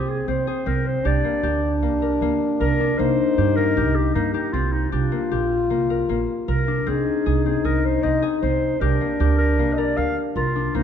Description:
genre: contemporary instrumental, contemporary.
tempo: 155 BPM.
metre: 5/4.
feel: straight.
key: unclear.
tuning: A4 = 440 Hz.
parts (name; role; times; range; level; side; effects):
warm clarinet; melody; 0.0-10.8 s; D4 to F5; -25 LUFS; equal; none.
warm French horn; second line; 0.0-10.8 s; C4 to F4; -24 LUFS; left 2 dB; none.
concert harp; arpeggios; 0.0-10.8 s; Bb3 to Bb4; -26 LUFS; left 7 dB; none.
upright bass; bass; 0.0-10.8 s; Bb1 to G2; -23 LUFS; right 3 dB; none.
room: moderate concert hall reverb, RT60 1.8 s.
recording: dark, warm production.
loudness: -19 LUFS.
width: side -8 dB against mid.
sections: 0.0-10.8 A section.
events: none.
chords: 0.0 Fm/C (rootless); 1.1 Gm/C; 4.9 Bb69; 6.9 Abadd9/C; 8.8 Gm7/C.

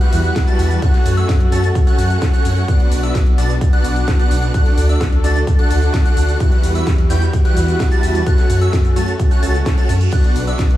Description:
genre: EDM, festival progressive house.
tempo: 129 BPM.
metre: 4/4.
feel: straight.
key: B minor.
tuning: A4 = 439 Hz.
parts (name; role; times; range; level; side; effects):
warm chamber string section; sustained chords; 0.0-10.8 s; D3 to A4; -25 LUFS; right 1 dB; sidechain pumping.
plucky unison lead; arpeggios; 0.0-10.6 s; E6 to A6; -26 LUFS; equal; wide subtle chorus, sidechain pumping, diffuse ambient delay.
big supersaw lead; riff; 0.0-10.6 s; G3 to A5; -23 LUFS; equal; wide subtle chorus, sidechain pumping, diffuse ambient delay.
house drum kit; drums; 0.0-10.8 s; crash cymbal, hi-hat, ride cymbal, shaker, snare drum; -28 LUFS; equal; overdrive.
detuned saw bass; bass; 0.1-10.8 s; B1 to F#2; -16 LUFS; equal; sidechain pumping.
electronic kick drum; drums; 0.4-10.7 s; none; -14 LUFS; equal; none.
reverse cymbal; sound effects; 9.6-10.1 s; none; -36 LUFS; right 5 dB; none.
room: light reverb.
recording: none.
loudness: -13 LUFS.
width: side -14 dB against mid.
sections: 0.0-10.8 A section.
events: reverse cymbal 9.6-10.1.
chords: 0.0 Emadd9; 0.8 F#m; 2.7 Bm; 4.5 D; 6.4 Emadd9; 8.3 F#m; 10.1 Bm.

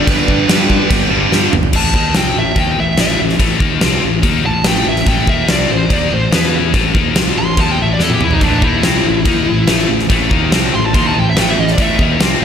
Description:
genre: hard rock.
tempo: 143 BPM.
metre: 4/4.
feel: straight.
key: unclear.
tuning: A4 = 441 Hz.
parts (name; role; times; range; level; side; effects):
high-gain lead guitar; melody; 0.0-12.0 s; D4 to C6; -19 LUFS; right 1 dB; distortion, slapback echo.
overdriven tonewheel organ; sustained chords; 0.0-1.7, 8.4-12.4 s; D4 to A5; -30 LUFS; right 2 dB; none.
distorted electric guitar; riff; 0.0-1.5 s; G2 to G3; -20 LUFS; right 12 dB; overdrive, slapback echo.
scooped high-gain guitar; riff; 0.0-12.4 s; G2 to E4; -18 LUFS; left 8 dB; distortion.
sludgy distorted guitar; riff; 0.0-1.5, 8.4-12.4 s; G2 to D#4; -20 LUFS; right 2 dB; overdrive.
fuzz fingered electric bass; bass; 0.1-12.4 s; G1 to G2; -19 LUFS; equal; overdrive.
huge arena drum kit; drums; 0.1-12.3 s; crash cymbal, kick drum, snare drum, toms; -15 LUFS; equal; none.
room: light reverb, small room ambience.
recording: none.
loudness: -11 LUFS.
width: side -8 dB against mid.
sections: 0.0-1.7 A section; 1.7-12.4 B section.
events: drum fill 1.3-1.7, 8.0-8.4; lead electric guitar solo 1.7-12.4.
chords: 0.0 G; 1.7 Am; 6.3 E5; 6.7 Am; 8.0 E5; 8.4 Am.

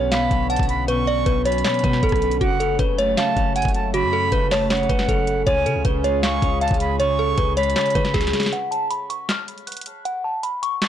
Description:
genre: hip hop, trap.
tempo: 157 BPM.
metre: 4/4.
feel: half-time.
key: unclear.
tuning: A4 = 440 Hz.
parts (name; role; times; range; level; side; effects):
delicate synth tine bell; melody; 0.0-10.9 s; F#4 to F#6; -22 LUFS; equal; chorus, phaser, low-pass filter.
semi-hollow electric guitar; accompaniment; 0.0-8.5 s; B2 to C#4; -27 LUFS; left 2 dB; none.
warm analog pad; sustained chords; 0.0-8.5 s; C#3 to G#4; -31 LUFS; right 2 dB; chorus.
long sustained 808-style bass; bass; 0.0-8.3 s; F#1 to C#3; -26 LUFS; equal; none.
bright reedy concert flute; second line; 0.1-8.5 s; F#5 to C#6; -27 LUFS; right 5 dB; ping-pong delay.
trap drum kit; drums; 0.1-10.9 s; handclaps, hi-hat, kick drum, rim click, snare drum; -23 LUFS; equal; vintage 12-bit sampler grit.
room: digital ambience.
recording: blown-out, overdriven recording, overdrive.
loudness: -18 LUFS.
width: side -10 dB against mid.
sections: 0.0-8.5 A section; 8.5-10.9 B section.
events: drum fill 8.1-8.5; break 8.5-10.9; filter sweep on synth bell 8.5-10.9.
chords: 0.0 Bmadd9; 2.4 F#m; 5.5 C#; 8.5 N.C..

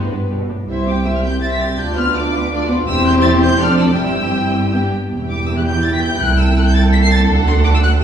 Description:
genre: quick classical-period movement for string orchestra.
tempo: 164 BPM.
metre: 3/4.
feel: straight.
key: C major.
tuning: A4 = 440 Hz.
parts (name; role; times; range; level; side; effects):
warm symphonic violin section; melody; 0.0-7.9 s; B4 to C7; -21 LUFS; left 2 dB; none.
warm symphonic violin section; second line; 0.0-8.0 s; B3 to G5; -21 LUFS; left 2 dB; none.
rich symphonic double bass section; bass; 0.0-8.0 s; E1 to D2; -18 LUFS; right 2 dB; none.
warm symphonic cello section; bass; 0.0-8.0 s; C2 to B2; -22 LUFS; right 3 dB; none.
dark symphonic viola section; accompaniment; 0.1-8.0 s; G3 to G4; -20 LUFS; equal; none.
room: wet recital hall reverb, RT60 1.6 s.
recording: heard from further back in the room, small room ambience.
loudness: -13 LUFS.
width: side -8 dB against mid.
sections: 0.7-8.0 A section.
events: none.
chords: 0.0 G; 0.7 C; 1.8 Bdim/D; 2.9 C/E; 3.6 Dm7/F; 4.0 C/G; 4.7 G5; 5.1 Em; 6.2 Am7/C; 7.3 D.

